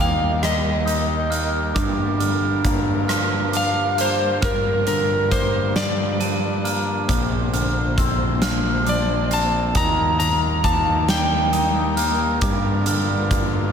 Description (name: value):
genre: post-rock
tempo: 45 BPM (dotted quarters)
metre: 6/8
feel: straight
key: G minor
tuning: A4 = 444 Hz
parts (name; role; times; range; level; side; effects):
- electric slide guitar; melody; 0.0-12.1 s; Bb4 to Bb5; -23 LUFS; left 1 dB; slapback echo, analog delay
- warm symphonic string section; sustained chords; 0.0-13.7 s; G3 to C5; -32 LUFS; equal; none
- glockenspiel with soft plastic mallets; arpeggios; 0.0-13.7 s; D6 to Eb7; -29 LUFS; right 4 dB; slapback echo, analog delay
- twangy electric guitar; arpeggios; 0.0-13.7 s; G2 to Eb4; -27 LUFS; left 1 dB; phaser, slapback echo, analog delay
- fuzz picked electric bass; bass; 0.0-13.7 s; Bb1 to G2; -24 LUFS; equal; overdrive
- huge arena drum kit; drums; 0.4-13.5 s; hi-hat, kick drum, rim click, snare drum; -24 LUFS; equal; none
room: wet lush hall reverb, RT60 3.1 s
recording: big arena sound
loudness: -18 LUFS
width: side -7 dB against mid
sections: 0.0-13.7 A section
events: none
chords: 0.0 Eb; 1.8 Gm7; 7.1 Bbadd9; 9.8 Eb; 12.4 Gm7